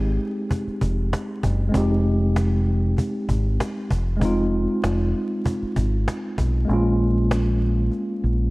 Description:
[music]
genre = hip hop, boom-bap hip-hop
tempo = 97 BPM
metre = 4/4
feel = swing 54% on 16ths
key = F minor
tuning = A4 = 440 Hz
[part]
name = mellow tine electric piano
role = accompaniment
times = 0.0-8.5 s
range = Ab3 to G4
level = -24 LUFS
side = equal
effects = medium stereo tremolo, cassette tape, high-pass filter, low-pass filter
[part]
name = deep dub fingered electric bass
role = bass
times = 0.0-8.5 s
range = F1 to B1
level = -21 LUFS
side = equal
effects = none
[part]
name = cajon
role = drums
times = 0.5-8.3 s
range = none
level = -27 LUFS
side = equal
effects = none
[sound]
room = small room ambience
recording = worn, warbling old tape, cassette tape, vinyl crackle, warbly pitch drift, faint mains hum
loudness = -20 LUFS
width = side -22 dB against mid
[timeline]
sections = 0.0-8.5 A section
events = kick muted 6.7-8.5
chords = 0.0 Fm7; 6.7 Bbm7

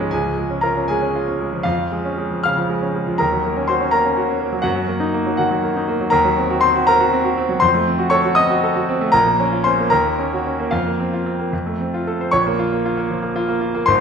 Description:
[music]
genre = classical, virtuoso piano study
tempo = 72-83 BPM (dotted quarters)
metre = 6/8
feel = rubato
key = Db major, Bb minor from 6.1 s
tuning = A4 = 440 Hz
[part]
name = bright concert grand piano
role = solo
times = 0.0-14.0 s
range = Ab1 to F6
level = -16 LUFS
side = equal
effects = none
[sound]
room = wet recital hall reverb, RT60 1.4 s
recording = recorded in a church or concert hall, nothing above 10.7 kHz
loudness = -16 LUFS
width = side -6 dB against mid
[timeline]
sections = 0.1-12.3 A section; 12.3-14.0 B section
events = none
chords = 0.1 Db; 1.6 Db/F; 3.2 Ebm7; 4.6 Ebm/Gb; 6.1 Cm7b5/Eb; 7.6 F7b9; 9.1 Bbm; 9.9 Ebm7; 10.7 Fsus4; 11.5 F; 12.3 Bbm

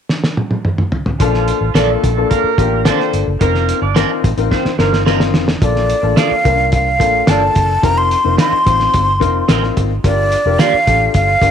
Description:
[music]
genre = uptempo 1960s-style soul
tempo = 109 BPM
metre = 4/4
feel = straight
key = Bb major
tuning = A4 = 435 Hz
[part]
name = cloth-damped thuddy drum kit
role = drums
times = 0.1-11.5 s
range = hi-hat, kick drum, snare drum, toms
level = -16 LUFS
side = right 1 dB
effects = none
[part]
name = warm horn section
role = second line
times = 1.2-5.0 s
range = F3 to D5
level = -20 LUFS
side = right 14 dB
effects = none
[part]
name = warm upright piano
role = accompaniment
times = 1.2-11.5 s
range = Bb3 to C5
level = -18 LUFS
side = left 13 dB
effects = none
[part]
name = vintage muted fingered electric bass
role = bass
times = 1.2-11.5 s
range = F1 to C2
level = -18 LUFS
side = right 1 dB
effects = none
[part]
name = electric guitar at the edge of break-up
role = stabs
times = 1.7-10.7 s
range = Bb3 to Eb5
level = -20 LUFS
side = right 15 dB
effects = phaser
[part]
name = breathy jazz flute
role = melody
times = 5.6-11.5 s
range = D5 to C6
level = -14 LUFS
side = right 1 dB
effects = none
[sound]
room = light reverb, studio reverb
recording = 1960s-style stereo with parts hard left and right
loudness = -12 LUFS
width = side -8 dB against mid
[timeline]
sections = 0.0-1.2 A section; 1.2-5.6 B section; 5.6-11.5 C section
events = drum fill 0.1-1.2, 4.5-5.6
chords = 0.0 N.C.; 1.2 Bbmaj7; 3.4 F7sus4; 5.6 Bbmaj7; 7.8 F7sus4; 10.0 Gm7

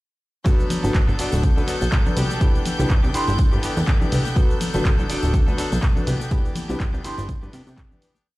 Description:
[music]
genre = filtered disco house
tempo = 123 BPM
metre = 4/4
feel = swing 56% on 16ths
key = unclear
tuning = A4 = 440 Hz
[part]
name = direct-recorded clean electric guitar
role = riff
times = 0.4-8.3 s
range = E3 to A4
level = -31 LUFS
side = left 1 dB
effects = vintage 12-bit sampler grit, sidechain pumping
[part]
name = dark concert grand piano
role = accompaniment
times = 0.5-8.1 s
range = D4 to C6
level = -28 LUFS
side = left 1 dB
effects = phaser, sidechain pumping
[part]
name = rich chamber string section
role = sustained chords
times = 0.5-8.3 s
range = A4 to G6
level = -32 LUFS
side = equal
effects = sidechain pumping
[part]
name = electronic kick drum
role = drums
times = 0.5-7.9 s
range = none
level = -19 LUFS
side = equal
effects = none
[part]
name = punchy analog drum machine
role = drums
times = 0.5-8.2 s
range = cabasa, handclaps, hi-hat, ride cymbal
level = -32 LUFS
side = right 1 dB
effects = none
[part]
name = tambourine and congas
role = percussion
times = 0.5-8.2 s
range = none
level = -31 LUFS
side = left 2 dB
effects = sidechain pumping on perc
[part]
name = plucky analog bass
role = bass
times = 0.8-8.0 s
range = D1 to C3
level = -23 LUFS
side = equal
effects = sidechain pumping
[sound]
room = digital ambience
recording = played on a big sound system in a bare room, large studio reverb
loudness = -18 LUFS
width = side -19 dB against mid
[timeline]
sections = 0.5-8.3 drop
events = drop 0.5-8.3; fade-out 5.7-8.3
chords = 0.5 Gmaj9; 2.2 Cmaj9; 4.4 Gmaj9; 6.1 Cmaj9

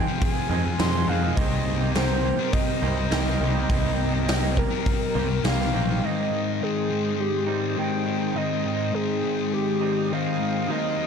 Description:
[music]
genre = rock, shoegaze and dream pop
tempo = 103 BPM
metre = 4/4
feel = straight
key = unclear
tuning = A4 = 440 Hz
[part]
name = reedy FM lead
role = melody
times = 0.0-11.1 s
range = G4 to C6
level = -28 LUFS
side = equal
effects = chorus, tape echo
[part]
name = lush unison pad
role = sustained chords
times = 0.0-11.1 s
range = Ab3 to Eb6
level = -36 LUFS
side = equal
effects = chorus, phaser
[part]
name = electric guitar through a small old amp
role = riff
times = 0.0-11.1 s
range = F2 to Bb4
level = -30 LUFS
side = right 14 dB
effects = reverse reverb
[part]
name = thick fuzz guitar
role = riff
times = 0.1-11.1 s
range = F2 to Eb4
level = -27 LUFS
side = left 11 dB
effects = distortion, lush chorus
[part]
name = huge arena drum kit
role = drums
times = 0.2-5.7 s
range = hi-hat, kick drum, snare drum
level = -27 LUFS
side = right 1 dB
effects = none
[part]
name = growling picked electric bass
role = bass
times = 0.5-6.0 s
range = Bb1 to F2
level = -25 LUFS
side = right 1 dB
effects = overdrive
[sound]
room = light reverb, small room ambience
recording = dark, warm production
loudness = -22 LUFS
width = side -6 dB against mid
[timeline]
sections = 0.0-6.0 A section; 6.0-11.1 B section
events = none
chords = 0.0 Fm7; 1.4 Cm7; 6.0 Abmaj7

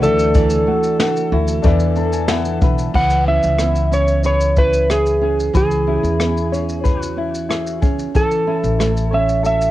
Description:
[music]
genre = acoustic pop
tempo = 92 BPM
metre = 4/4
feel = straight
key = unclear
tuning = A4 = 443 Hz
[part]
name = electric slide guitar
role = melody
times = 0.0-9.7 s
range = G#4 to F#5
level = -18 LUFS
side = right 1 dB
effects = cassette tape, tape echo
[part]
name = dark upright piano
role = accompaniment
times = 0.0-3.0 s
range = D4 to A5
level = -25 LUFS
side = left 9 dB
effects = none
[part]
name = tenor ukulele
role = accompaniment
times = 0.0-9.7 s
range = E4 to D5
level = -25 LUFS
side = left 7 dB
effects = none
[part]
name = nylon-string guitar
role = arpeggios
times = 0.0-9.7 s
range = E3 to G#4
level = -23 LUFS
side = right 6 dB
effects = none
[part]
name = upright bass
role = bass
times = 0.0-9.7 s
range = A1 to E2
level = -20 LUFS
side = left 1 dB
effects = none
[part]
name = jazz brush drum kit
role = drums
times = 0.0-9.7 s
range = crash cymbal, kick drum, rim click, shaker, snare drum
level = -19 LUFS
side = left 1 dB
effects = cassette tape
[sound]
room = light reverb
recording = home recording on cassette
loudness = -14 LUFS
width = side -14 dB against mid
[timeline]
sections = 0.0-3.0 A section; 3.0-9.7 B section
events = upright piano fill 1.7-3.0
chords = 0.0 Dadd9; 1.7 E7sus4; 3.0 C#m7; 8.2 A6

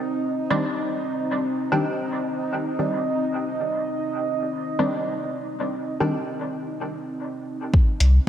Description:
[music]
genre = dub techno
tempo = 112 BPM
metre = 4/4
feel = swing 53% on 16ths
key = C minor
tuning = A4 = 440 Hz
[part]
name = deep dark ambient pad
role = sustained chords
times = 0.0-8.3 s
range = C4 to Eb5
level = -27 LUFS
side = right 1 dB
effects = chorus, built-in reverb, sidechain pumping
[part]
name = bubbling stepped-filter texture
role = texture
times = 0.0-7.7 s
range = Eb4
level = -35 LUFS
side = right 3 dB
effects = chorus, built-in reverb, sidechain pumping
[part]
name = filtered dub chord stab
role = stabs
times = 0.5-6.1 s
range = Eb3 to D4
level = -27 LUFS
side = equal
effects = chorus, phaser, sidechain pumping, dub echo
[part]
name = electronic kick drum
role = drums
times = 7.7-7.8 s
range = none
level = -16 LUFS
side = equal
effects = studio reverb
[part]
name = warm sub bass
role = bass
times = 8.0-8.2 s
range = C2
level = -14 LUFS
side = equal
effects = tube saturation, sidechain pumping
[part]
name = electronic hi-hat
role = drums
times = 8.0-8.1 s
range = none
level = -25 LUFS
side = left 2 dB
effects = studio reverb
[sound]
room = moderate lush hall reverb, RT60 2.5 s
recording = bright 1980s-style digital production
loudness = -23 LUFS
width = side -10 dB against mid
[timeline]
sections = 0.0-7.7 A section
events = none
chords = 0.0 Cmadd9

